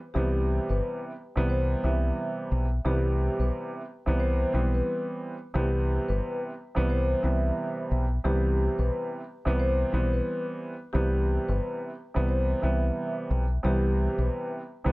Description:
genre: hip hop, boom-bap hip-hop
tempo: 89 BPM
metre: 4/4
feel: swing 61% on 16ths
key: C major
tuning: A4 = 440 Hz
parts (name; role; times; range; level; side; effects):
- vibraphone with soft mallets; melody; 0.1-14.5 s; G4 to E5; -32 LUFS; equal; high-pass filter, low-pass filter
- dark upright piano; accompaniment; 0.1-14.9 s; C3 to C4; -30 LUFS; right 2 dB; cassette tape, high-pass filter, low-pass filter
- deep dub fingered electric bass; bass; 0.2-14.9 s; G1 to C2; -25 LUFS; equal; none
room: little or no reverb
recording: none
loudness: -25 LUFS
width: side -21 dB against mid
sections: 0.0-14.9 A section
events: none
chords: 0.0 Cmaj7

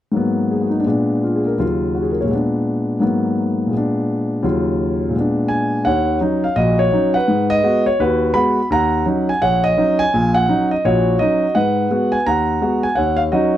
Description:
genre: solo jazz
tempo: 168 BPM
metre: 4/4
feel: swing 63% on 8ths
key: Eb minor from 5.9 s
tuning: A4 = 440 Hz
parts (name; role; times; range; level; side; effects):
- warm concert grand piano; solo; 0.1-13.6 s; Bb1 to Cb6; -15 LUFS; equal; none
room: light reverb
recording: dry, close 1970s-style studio recording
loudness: -15 LUFS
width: side -12 dB against mid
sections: 0.1-5.9 A section; 5.9-13.6 B section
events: none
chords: 0.1 Abm9; 0.9 Bb7b9; 1.6 Ebm9; 2.3 Bb7b9; 3.0 Abm9; 3.7 Bb7b9; 4.4 Ebm9; 5.1 Bb7b9; 5.9 Ebm7; 7.3 Abm7; 8.7 Ebm7; 11.6 Abm7; 13.0 Ebm7

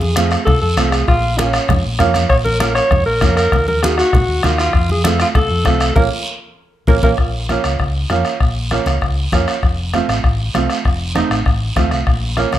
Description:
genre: latin, cumbia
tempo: 197 BPM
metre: 4/4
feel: straight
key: Bb harmonic minor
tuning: A4 = 436 Hz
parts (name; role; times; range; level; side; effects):
- warm alto saxophone; melody; 0.0-7.1 s; Db4 to Db5; -18 LUFS; equal; plate reverb
- fingered electric bass; bass; 0.0-12.6 s; F1 to F2; -19 LUFS; equal; none
- congas; percussion; 0.0-12.6 s; none; -23 LUFS; right 2 dB; none
- warm upright piano; accompaniment; 0.2-12.6 s; A3 to Gb4; -20 LUFS; right 6 dB; none
- bombo; percussion; 0.2-12.6 s; none; -18 LUFS; left 2 dB; none
- guiro; percussion; 0.2-12.6 s; none; -26 LUFS; right 2 dB; none
room: moderate large studio reverb, RT60 0.9 s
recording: none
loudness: -13 LUFS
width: side -12 dB against mid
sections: 0.0-7.2 A section; 7.2-12.6 B section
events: band accent 6.0-7.2; drum fill 6.4-7.2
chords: 0.0 F; 1.1 Bbm; 3.5 Ebm; 4.7 F; 6.0 Bbm; 9.6 F7; 12.1 Bbm

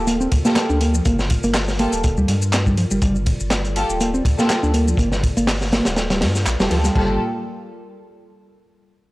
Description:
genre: breakbeat, breaks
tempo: 122 BPM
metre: 4/4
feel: swing 55% on 16ths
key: G minor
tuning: A4 = 440 Hz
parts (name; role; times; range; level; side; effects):
- warbly tape-like pad; sustained chords; 0.0-7.2 s; G3 to D5; -32 LUFS; left 1 dB; chorus, built-in reverb, sidechain pumping
- saturated sub bass; bass; 0.0-7.2 s; D1 to G2; -22 LUFS; equal; none
- picked electric bass; riff; 0.1-7.2 s; F3 to D4; -22 LUFS; equal; tube saturation, analog delay
- crunchy breakbeat drum kit; drums; 0.1-7.1 s; crash cymbal, hi-hat, kick drum, snare drum; -21 LUFS; equal; none
- garage drum kit; drums; 0.1-6.9 s; handclaps, ride cymbal, shaker; -28 LUFS; equal; overdrive
- dark studio string section; stabs; 0.5-7.1 s; Bb3 to A4; -24 LUFS; equal; analog delay
room: light reverb, studio reverb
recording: dry, gritty hardware recording, transformer saturation, cassette tape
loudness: -16 LUFS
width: side -19 dB against mid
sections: 0.0-7.0 A section; 7.0-8.9 B section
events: drop 0.0-7.0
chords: 0.0 Gm9

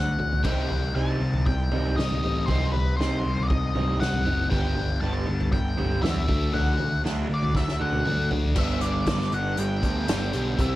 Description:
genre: indie rock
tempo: 118 BPM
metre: 4/4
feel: straight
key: G major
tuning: A4 = 440 Hz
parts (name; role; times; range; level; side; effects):
- octave-fuzz lead guitar; melody; 0.0-10.8 s; B4 to A5; -31 LUFS; left 2 dB; distortion
- crunchy overdriven guitar; riff; 0.0-10.8 s; G2 to G4; -31 LUFS; left 3 dB; phaser
- fuzz picked electric bass; bass; 0.0-10.8 s; F#1 to E2; -28 LUFS; equal; overdrive
- unplugged drum kit; drums; 0.2-10.7 s; crash cymbal, hi-hat, kick drum, snare drum, toms; -26 LUFS; equal; none
- raw garage guitar; riff; 0.4-10.8 s; G2 to E4; -32 LUFS; right 5 dB; overdrive, wide subtle chorus
room: small room reverb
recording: vinyl crackle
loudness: -22 LUFS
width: side -16 dB against mid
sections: 0.5-8.6 A section; 8.6-10.8 B section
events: drum fill 7.6-8.6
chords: 0.5 Cm; 4.5 G; 6.3 D; 8.6 G

